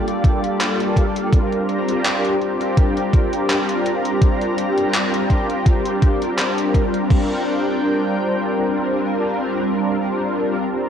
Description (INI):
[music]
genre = vaporwave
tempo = 83 BPM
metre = 4/4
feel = swing 54% on 16ths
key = Bb major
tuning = A4 = 440 Hz
[part]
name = mellow synth brass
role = accompaniment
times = 0.0-10.9 s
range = G3 to Bb4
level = -19 LUFS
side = equal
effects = ensemble chorus, analog delay
[part]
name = lush unison pad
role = sustained chords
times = 0.0-10.3 s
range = D4 to Bb5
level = -26 LUFS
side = equal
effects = chorus
[part]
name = gated 80s digital drum machine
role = drums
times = 0.1-7.3 s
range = crash cymbal, handclaps, hi-hat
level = -25 LUFS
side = equal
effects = gated reverb, overdrive
[part]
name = electronic kick drum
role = drums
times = 0.2-7.3 s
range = none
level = -16 LUFS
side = equal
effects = overdrive
[sound]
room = light reverb, digital ambience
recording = cassette tape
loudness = -17 LUFS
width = side -8 dB against mid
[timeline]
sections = 0.0-7.1 A section; 7.1-10.0 B section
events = none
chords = 0.0 Gm7; 1.3 Bb69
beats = 0.60 | 1.32 2.05 2.77 3.49 | 4.21 4.94 5.66 6.38 | 7.11 7.83 8.55 9.28